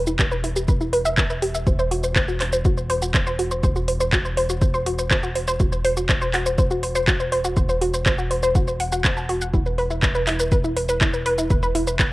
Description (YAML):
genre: melodic techno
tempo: 122 BPM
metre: 4/4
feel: straight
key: unclear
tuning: A4 = 438 Hz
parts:
  - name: tight sequencer bass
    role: bass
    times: 0.0-12.1 s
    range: E1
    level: -28 LUFS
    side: equal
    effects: tube saturation, sidechain pumping
  - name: analog pluck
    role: arpeggios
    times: 0.1-12.1 s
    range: E4 to E6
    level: -23 LUFS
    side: equal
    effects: chorus, sidechain pumping, cassette tape, analog delay
  - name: house drum kit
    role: drums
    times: 0.1-12.1 s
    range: handclaps, hi-hat, shaker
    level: -25 LUFS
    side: equal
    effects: sidechain pumping on hats, sidechain pumping on perc
  - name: electronic kick drum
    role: drums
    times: 0.2-12.1 s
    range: none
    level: -22 LUFS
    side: equal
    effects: overdrive
room: light reverb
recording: home recording on cassette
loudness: -18 LUFS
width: side -19 dB against mid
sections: 0.0-12.1 A section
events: none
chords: 0.0 Em; 1.7 F#(b5, no3)/E; 9.5 E5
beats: 0.19 0.68 1.18 | 1.67 2.16 2.65 3.14 | 3.63 4.13 4.62 5.11 | 5.60 6.09 6.58 7.08 | 7.57 8.06 8.55 9.04 | 9.54 10.03 10.52 11.01 | 11.50 11.99